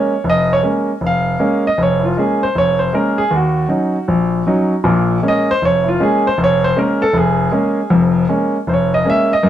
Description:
solo jazz; 157 BPM; 4/4; swing 64% on 8ths; Bb minor; A4 = 440 Hz
warm baby grand piano; solo; 0.0-9.5 s; F1 to F5; -13 LUFS; equal
moderate studio reverb, RT60 0.9 s; dark, warm production; -13 LUFS; side -11 dB against mid
0.0-9.5 A section
grand piano solo 0.0-9.5
0.0 Bbm7; 3.3 Ebm7; 4.8 Bbm7
| 0.25 0.63 1.01 1.40 | 1.78 2.16 2.55 2.93 | 3.31 3.70 4.08 4.46 | 4.84 5.23 5.61 5.99 | 6.38 6.76 7.14 7.52 | 7.91 8.29 8.67 9.06 | 9.44

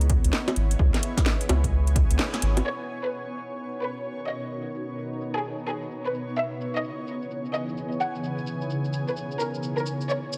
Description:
UK garage, two-step garage; 129 BPM; 4/4; swing 63% on 16ths; C# dorian; A4 = 442 Hz
ethereal airy pad; sustained chords; 0.0-10.4 s; B2 to D#5; -38 LUFS; equal; ensemble chorus, built-in reverb, phaser, sidechain pumping
soft dub sub bass; bass; 0.0-2.6 s; G#1 to C#2; -24 LUFS; equal
garage drum kit; drums; 0.0-10.4 s; bongos, hi-hat, shaker, snare drum; -31 LUFS; equal; low-pass filter on hats, low-pass filter on snare, low-pass filter on perc
granular cloud pad; texture; 0.0-10.4 s; E3 to A#5; -36 LUFS; equal; built-in reverb, sidechain pumping
electronic kick drum; drums; 0.1-2.1 s; -26 LUFS; equal
warm studio violin section; melody; 2.7-10.3 s; G#4 to F#5; -33 LUFS; equal; tape echo
light reverb, digital ambience; -27 LUFS; mono
0.0-2.7 A section; 2.7-10.4 B section
band accent 2.2; filter sweep on drum 2.7-10.4; filter sweep on ambient pad 2.7-10.4
0.0 C#m7; 2.7 Bmaj9; 6.1 C#m7
0.33 | 0.79 1.26 1.72 2.19 | 2.65 3.12 3.58 4.05 | 4.51 4.98 5.45 5.91 | 6.38 6.84 7.30 7.77 | 8.24 8.70 9.17 9.63 | 10.10

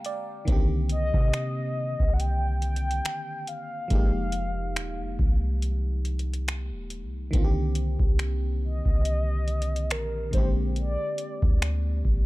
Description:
contemporary R&B; 70 BPM; 4/4; swing 54% on 16ths; C minor; A4 = 441 Hz
FM electric piano; accompaniment; 0.0-12.3 s; Db3 to Bb5; -34 LUFS; equal; chorus
booming analog drum machine; drums; 0.0-12.3 s; finger snaps, hi-hat, kick drum; -24 LUFS; equal
soft 808-style bass; bass; 0.5-12.3 s; Eb1 to C3; -27 LUFS; equal
mellow horn-like synth lead; melody; 0.9-12.0 s; Bb4 to G5; -33 LUFS; left 1 dB; chorus, ping-pong delay
little or no reverb; dark, warm production; -24 LUFS; side -19 dB against mid
0.0-12.3 A section
FM electric piano fill 0.0-0.5
0.5 Cm9; 3.9 Fm11; 7.3 Cm9; 10.3 Bb13
| 0.48 1.33 2.19 3.05 | 3.91 4.76 5.62 6.48 | 7.33 8.19 9.05 9.91 | 10.76 11.62

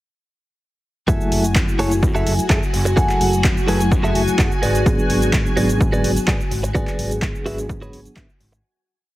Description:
filtered disco house; 127 BPM; 4/4; straight; F# minor; A4 = 440 Hz
mellow reed electric piano; accompaniment; 1.1-8.2 s; F#3 to G#5; -23 LUFS; left 1 dB; fast tremolo, phaser, sidechain pumping
string machine, full ensemble; sustained chords; 1.1-8.7 s; F#4 to G#5; -26 LUFS; equal; ensemble chorus, vintage 12-bit sampler grit, sidechain pumping
direct-recorded clean electric guitar; riff; 1.1-8.6 s; F#4 to F#5; -24 LUFS; right 2 dB; sidechain pumping
overdriven fingered electric bass; bass; 1.1-8.6 s; F#1 to G#2; -23 LUFS; equal; sidechain pumping
electronic kick drum; drums; 1.1-8.3 s; -20 LUFS; equal; overdrive
punchy analog drum machine; drums; 1.1-8.6 s; handclaps, hi-hat, shaker; -26 LUFS; equal; overdrive, sidechain pumping on hats, sidechain pumping on perc
little or no reverb; heavily compressed radio sound; -16 LUFS; side -16 dB against mid
1.1-8.6 drop
drop 1.1-8.6; fade-out 6.1-8.6
1.1 F#m9; 4.6 G#m7b5
| 1.08 1.55 2.03 2.50 | 2.97 3.44 3.92 4.39 | 4.86 5.33 5.80 6.28 | 6.75 7.22 7.70 8.17

